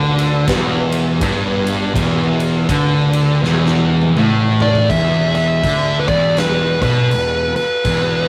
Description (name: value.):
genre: stoner and doom metal.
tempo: 81 BPM.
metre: 4/4.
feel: swing 60% on 8ths.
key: E minor.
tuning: A4 = 437 Hz.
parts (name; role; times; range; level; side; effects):
fuzz guitar; riff; 0.0-4.9 s; E2 to D3; -23 LUFS; equal; distortion.
thick fuzz guitar; riff; 0.0-8.3 s; E2 to D3; -21 LUFS; equal; distortion.
thick fuzz guitar; riff; 0.0-8.3 s; E2 to D3; -24 LUFS; equal; distortion.
fuzz picked electric bass; bass; 0.0-8.3 s; E1 to D2; -26 LUFS; equal; overdrive.
big rock drum kit; drums; 0.2-8.1 s; crash cymbal, kick drum, ride cymbal, snare drum, toms; -24 LUFS; equal; none.
fuzz lead guitar; melody; 4.6-8.3 s; B4 to E5; -19 LUFS; equal; distortion, tape echo.
room: light reverb.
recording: rough rehearsal-room recording.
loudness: -16 LUFS.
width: mono.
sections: 0.0-4.9 A section; 4.9-8.3 B section.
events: drum fill 3.4-4.9.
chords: 0.0 Em; 4.9 E5.